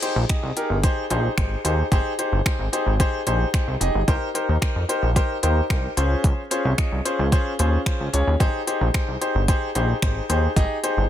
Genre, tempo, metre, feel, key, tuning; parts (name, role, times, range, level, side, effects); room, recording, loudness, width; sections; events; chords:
dance-pop; 111 BPM; 4/4; straight; Ab major; A4 = 440 Hz
clear grand piano; accompaniment; 0.0-11.0 s; Db4 to Eb5; -24 LUFS; left 1 dB; sidechain pumping
smooth R&B drum kit; drums; 0.0-11.0 s; finger snaps, hi-hat, kick drum; -22 LUFS; equal; overdrive
chorused synth bass; bass; 0.2-11.1 s; F1 to F2; -22 LUFS; equal; sidechain pumping
digital ambience; dense, heavily limited modern master; -19 LUFS; side -11 dB against mid
0.0-11.1 A section
0.0 Abmaj7; 4.1 Cm7; 6.0 Dbmaj7; 8.4 Abmaj7